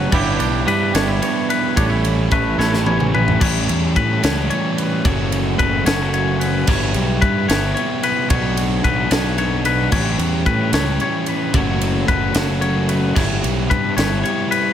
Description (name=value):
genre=math rock and midwest emo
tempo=74 BPM (dotted quarters)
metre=6/8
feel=straight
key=unclear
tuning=A4 = 442 Hz
part: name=twangy electric guitar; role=accompaniment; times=0.0-3.4 s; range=G2 to G4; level=-23 LUFS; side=right 7 dB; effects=tape echo
part: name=twangy electric guitar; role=arpeggios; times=0.0-14.7 s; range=B4 to C#5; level=-22 LUFS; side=left 6 dB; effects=tape echo
part: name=overdriven electric guitar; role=riff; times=0.0-14.7 s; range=A2 to G4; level=-21 LUFS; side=right 1 dB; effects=tape echo
part: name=fuzz fingered electric bass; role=bass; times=0.0-14.2 s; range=F#1 to A2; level=-21 LUFS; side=equal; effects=overdrive
part: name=crisp fusion drum kit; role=drums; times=0.1-14.6 s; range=crash cymbal, kick drum, ride cymbal, snare drum, toms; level=-22 LUFS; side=equal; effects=none
room=light reverb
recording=echo-heavy mix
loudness=-15 LUFS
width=side -9 dB against mid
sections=0.0-3.4 A section; 3.4-14.7 B section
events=drum fill 2.6-3.4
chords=0.1 Em7/G; 1.8 A7(no3); 3.4 A7; 5.0 F#m; 6.7 Em/G; 8.3 Bm; 9.9 A7; 11.5 F#m; 13.2 Em/G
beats=| 0.12 0.94 | 1.76 2.59 | 3.41 4.23 | 5.04 5.86 | 6.67 7.49 | 8.30 9.11 | 9.92 10.73 | 11.54 12.35 | 13.16 13.97